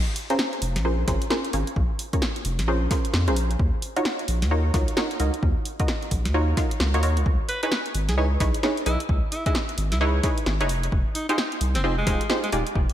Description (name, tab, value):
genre	UK garage, two-step garage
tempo	131 BPM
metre	4/4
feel	swing 62% on 16ths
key	Bb minor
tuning	A4 = 438 Hz
part	saturated sub bass	bass	0.0-12.9 s	Eb1 to F2	-24 LUFS	equal	none
part	punchy analog drum machine	drums	0.2-12.9 s	hi-hat, snare drum	-29 LUFS	equal	none
part	punchy chord stab	stabs	0.3-12.6 s	Db4 to F5	-27 LUFS	equal	chorus, analog delay
part	electronic kick drum	drums	1.1-12.9 s	none	-25 LUFS	equal	none
part	edgy alto saxophone	melody	7.5-12.6 s	Ab3 to Cb5	-31 LUFS	equal	analog delay
room	light reverb, digital ambience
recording	none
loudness	-21 LUFS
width	side -11 dB against mid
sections	0.0-12.9 A section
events	filter sweep on synth stab 0.0-12.9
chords	0.0 Bbm9; 3.6 Ebm9; 7.3 Dbm9; 10.7 Fm9